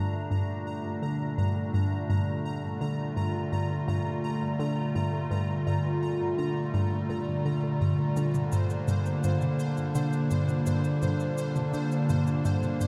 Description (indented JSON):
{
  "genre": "ambient, sequencer-driven space music",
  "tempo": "84 BPM",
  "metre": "4/4",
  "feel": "straight",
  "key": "G minor",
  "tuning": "A4 = 439 Hz",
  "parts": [
    { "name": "evolving wavetable pad", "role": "sustained chords", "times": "0.0-12.9 s", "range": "Bb2 to F4", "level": "-31 LUFS", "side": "equal", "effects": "chorus, built-in reverb" },
    { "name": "hollow square pluck", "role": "riff", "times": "0.0-12.9 s", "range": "G2 to D3", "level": "-33 LUFS", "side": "equal", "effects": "chorus, phaser, analog delay" },
    { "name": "pulsing gated texture", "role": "texture", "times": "0.0-12.9 s", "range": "C5 to Bb5", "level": "-42 LUFS", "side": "equal", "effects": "chorus, built-in reverb" },
    { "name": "electronic cabasa and toms", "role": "percussion", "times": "8.2-12.9 s", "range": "none", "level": "-39 LUFS", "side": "equal", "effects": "analog delay" }
  ],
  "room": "wet concert hall reverb, RT60 2.1 s",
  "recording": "dark, warm production",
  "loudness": "-28 LUFS",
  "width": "mono",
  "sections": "0.0-12.9 A section",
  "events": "none",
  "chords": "0.0 Gmadd9"
}